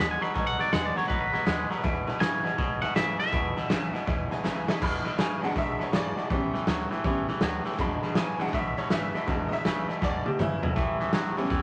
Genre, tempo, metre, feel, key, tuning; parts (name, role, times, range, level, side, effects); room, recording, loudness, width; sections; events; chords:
rockabilly; 161 BPM; 4/4; swing 64% on 8ths; E mixolydian; A4 = 440 Hz
twangy electric guitar; melody; 0.0-4.3 s; B4 to B5; -32 LUFS; equal
picked steel-string acoustic guitar; accompaniment; 0.0-11.6 s; E2 to F#4; -42 LUFS; equal
tack piano; accompaniment; 0.0-11.6 s; F#3 to B5; -36 LUFS; equal
twangy electric guitar; riff; 0.0-11.6 s; E2 to G#3; -34 LUFS; equal
upright bass; bass; 0.0-11.6 s; E1 to E2; -42 LUFS; equal
raw garage drum kit; drums; 0.2-11.6 s; crash cymbal, hi-hat, kick drum, snare drum, toms; -31 LUFS; equal
moderate studio reverb, RT60 0.6 s; -28 LUFS; mono
0.0-4.8 A section; 4.8-11.6 B section
drum fill 4.4-4.8, 10.0-10.8; honky-tonk piano solo 4.8-11.6
0.0 B7; 1.8 E7; 6.3 A7; 7.8 E7; 10.8 A7